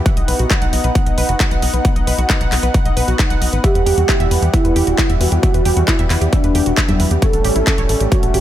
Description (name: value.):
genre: uplifting trance.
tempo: 134 BPM.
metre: 4/4.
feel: straight.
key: E dorian.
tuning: A4 = 440 Hz.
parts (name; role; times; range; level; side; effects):
lush unison pad; sustained chords; 0.0-8.4 s; E3 to F#5; -23 LUFS; left 1 dB; chorus, sidechain pumping.
analog pluck; arpeggios; 0.1-8.4 s; C#4 to F#5; -24 LUFS; right 2 dB; chorus, sidechain pumping, tape echo.
big-room dance drum kit; drums; 0.1-8.4 s; congas, handclaps, hi-hat; -22 LUFS; equal; overdrive, studio reverb.
electronic kick drum; drums; 0.1-8.2 s; none; -16 LUFS; equal; overdrive, studio reverb.
tight sequencer bass; bass; 0.2-8.4 s; E1 to E2; -18 LUFS; equal; sidechain pumping.
warm velvety synth lead; second line; 3.6-8.4 s; D4 to A4; -19 LUFS; right 2 dB; chorus, tape echo.
room: little or no reverb.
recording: none.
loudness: -13 LUFS.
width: side -12 dB against mid.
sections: 0.0-8.4 A section.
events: none.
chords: 0.1 B; 3.6 Emadd9; 7.2 A7.